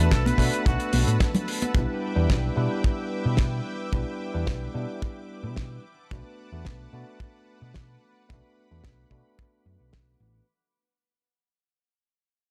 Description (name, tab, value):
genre	nu-disco, nu disco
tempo	110 BPM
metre	4/4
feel	straight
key	B minor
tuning	A4 = 440 Hz
part	bright reedy silver concert flute	melody	0.0-1.2 s	F#4 to B4	-34 LUFS	equal	analog delay
part	tine electric piano	accompaniment	0.0-10.4 s	G3 to B4	-34 LUFS	equal	sidechain pumping, low-pass filter, analog delay
part	lush unison pad	sustained chords	0.0-10.5 s	B4 to E6	-40 LUFS	equal	chorus, sidechain pumping
part	hollow-body short-scale picked electric bass	bass	0.0-10.4 s	A1 to B2	-28 LUFS	equal	tube saturation, sidechain pumping
part	damped 70s drum kit	drums	0.1-10.0 s	hi-hat, snare drum	-33 LUFS	equal	none
part	kick drum	drums	0.1-10.0 s	none	-27 LUFS	equal	none
part	congas	percussion	0.3-1.7 s	none	-30 LUFS	equal	none
room	studio reverb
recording	dry, gritty hardware recording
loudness	-26 LUFS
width	mono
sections	0.0-10.5 A section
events	fade-out 0.0-10.5; filter sweep on tine electric piano 0.0-10.5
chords	0.0 Bm7; 1.7 Em7/B; 5.8 Bm7